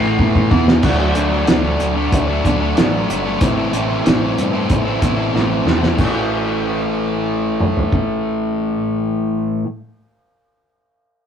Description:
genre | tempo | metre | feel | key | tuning
classic rock | 93 BPM | 4/4 | straight | A dorian | A4 = 439 Hz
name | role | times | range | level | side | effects
overdriven electric guitar | riff | 0.0-9.7 s | A2 to E4 | -18 LUFS | left 1 dB | none
growling picked electric bass | bass | 0.0-9.6 s | G1 to G2 | -23 LUFS | equal | overdrive
cloth-damped thuddy drum kit | drums | 0.2-8.1 s | crash cymbal, hi-hat, kick drum, snare drum, toms | -18 LUFS | equal | none
room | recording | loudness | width
moderate small room reverb, RT60 0.5 s | rough rehearsal-room recording, tube saturation | -15 LUFS | side -8 dB against mid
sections
0.8-6.0 A section; 6.0-8.6 B section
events
drum fill 0.2-0.8, 5.3-6.0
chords
0.0 A5; 0.8 D; 3.4 Am; 6.0 A5

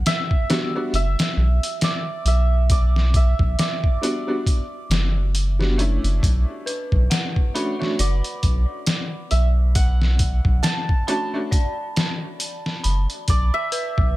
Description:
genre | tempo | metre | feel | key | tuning
trip hop | 68 BPM | 4/4 | swing 57% on 16ths | B minor | A4 = 440 Hz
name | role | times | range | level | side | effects
santur | melody | 0.0-14.2 s | C#5 to A5 | -28 LUFS | right 2 dB | tape echo
round analog bass | bass | 0.0-14.1 s | F#1 to B1 | -18 LUFS | equal | none
trip hop sampler-style drum kit | drums | 0.1-14.2 s | hi-hat, kick drum, snare drum | -21 LUFS | equal | small room ambience
clear upright piano | accompaniment | 0.5-11.5 s | G3 to F#4 | -27 LUFS | equal | tremolo, tape echo
dark detuned synth bell | arpeggios | 6.7-14.2 s | B4 to B5 | -34 LUFS | left 2 dB | chorus, digital delay
room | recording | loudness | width
little or no reverb | none | -18 LUFS | side -17 dB against mid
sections
0.0-14.2 A section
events
none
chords
0.0 Em7; 6.2 Bm9; 13.3 E7(no3)

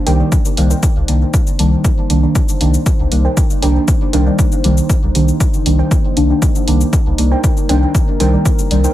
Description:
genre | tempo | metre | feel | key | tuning
dub techno | 118 BPM | 4/4 | straight | C minor | A4 = 439 Hz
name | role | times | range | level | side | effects
deep dark ambient pad | sustained chords | 0.0-8.9 s | Bb3 to C5 | -24 LUFS | left 2 dB | chorus, built-in reverb, sidechain pumping
warbly dusty pluck | riff | 0.1-8.9 s | Eb4 to G5 | -25 LUFS | right 3 dB | chorus, sidechain pumping, dub echo
deep mellow chord stab | stabs | 0.1-8.9 s | Eb3 to D4 | -17 LUFS | equal | chorus, phaser, sidechain pumping, dub echo
soft dub sub bass | bass | 0.1-8.9 s | C2 | -14 LUFS | equal | sidechain pumping
electronic hi-hat and cabasa | drums | 0.1-8.9 s | none | -24 LUFS | left 2 dB | overdrive
electronic kick drum | drums | 0.3-8.6 s | none | -14 LUFS | equal | overdrive
room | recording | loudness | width
digital ambience | none | -11 LUFS | side -14 dB against mid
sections
0.0-8.9 A section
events
none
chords
0.0 Cm7

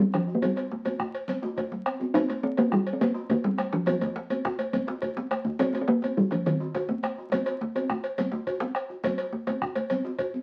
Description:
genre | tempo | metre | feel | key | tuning
west african traditional, West African drum ensemble | 139 BPM (dotted quarters) | 12/8 | straight | Eb major pentatonic | A4 = 440 Hz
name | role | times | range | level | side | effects
talking drum | melody | 0.0-8.7 s | Eb3 to Eb4 | -27 LUFS | equal | none
congas | percussion | 0.0-10.4 s | none | -36 LUFS | equal | none
bombo | percussion | 0.1-10.3 s | none | -37 LUFS | equal | none
cowbell | percussion | 0.1-10.3 s | none | -34 LUFS | equal | none
djembe | percussion | 0.1-10.3 s | none | -40 LUFS | equal | none
djembe | percussion | 0.7-9.9 s | none | -36 LUFS | equal | none
room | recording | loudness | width
moderate studio reverb, RT60 0.6 s | very old 78 rpm record, vinyl crackle | -28 LUFS | mono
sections
0.0-9.0 A section; 9.0-10.4 B section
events
drum fill 1.7-2.1, 7.3-9.0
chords
none

